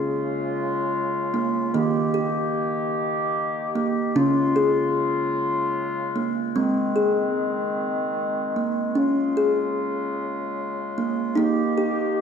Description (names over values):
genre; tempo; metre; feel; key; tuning
world meditative, meditative tuned percussion; 50 BPM (dotted quarters); 6/8; straight; Db lydian; A4 = 440 Hz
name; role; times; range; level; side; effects
mellow woodwind section; sustained chords; 0.0-12.2 s; Db3 to G4; -25 LUFS; left 1 dB; none
kalimba; arpeggios; 0.0-12.2 s; Db3 to Ab4; -24 LUFS; right 1 dB; none
room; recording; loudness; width
wet concert hall reverb, RT60 2.1 s; none; -21 LUFS; side -7 dB against mid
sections
0.0-12.2 A section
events
none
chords
0.0 Db; 1.7 Eb; 4.2 Db; 6.6 Ab; 9.0 Db; 11.4 Eb